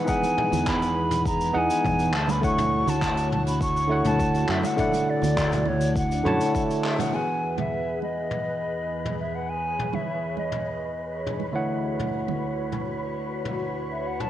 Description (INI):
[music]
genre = sunset chillout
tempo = 102 BPM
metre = 4/4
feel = straight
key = unclear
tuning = A4 = 440 Hz
[part]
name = hollow concert flute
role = melody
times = 0.0-14.3 s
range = C#5 to C#6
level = -28 LUFS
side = equal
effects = cassette tape, analog delay
[part]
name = barky tine electric piano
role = accompaniment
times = 0.0-14.3 s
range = D3 to A5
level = -27 LUFS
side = equal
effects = auto-pan, cassette tape
[part]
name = airy breathy pad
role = sustained chords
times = 0.0-14.3 s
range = D2 to C#5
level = -34 LUFS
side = equal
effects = chorus, phaser, cassette tape
[part]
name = electronic kick drum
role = drums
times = 0.1-6.7 s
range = none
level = -30 LUFS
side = equal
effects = cassette tape
[part]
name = jazz brush drum kit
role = drums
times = 0.1-14.3 s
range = handclaps, hi-hat, shaker, toms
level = -32 LUFS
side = left 1 dB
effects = cassette tape
[part]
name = congas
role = percussion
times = 0.2-12.8 s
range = none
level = -34 LUFS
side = right 8 dB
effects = none
[part]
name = fretless electric bass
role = bass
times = 0.5-6.4 s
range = D2 to F#2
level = -26 LUFS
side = equal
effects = tube saturation, ensemble chorus
[part]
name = wind-like tuned noise texture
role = texture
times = 7.8-14.3 s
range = B4 to B5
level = -38 LUFS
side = equal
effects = built-in reverb, cassette tape
[sound]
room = moderate lush hall reverb, RT60 1.9 s, studio reverb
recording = home recording on cassette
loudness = -23 LUFS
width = side -12 dB against mid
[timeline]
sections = 0.0-7.1 A section; 7.1-14.3 B section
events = band accent 6.8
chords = 0.0 Emaj7; 2.1 Dmaj7; 7.1 Emaj7; 11.5 Dmaj7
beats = | 0.08 0.66 1.25 1.84 | 2.43 3.02 3.60 4.19 | 4.78 5.37 5.96 6.55 | 7.13 7.72 8.31 8.90 | 9.49 10.08 10.66 11.25 | 11.84 12.43 13.02 13.61 | 14.19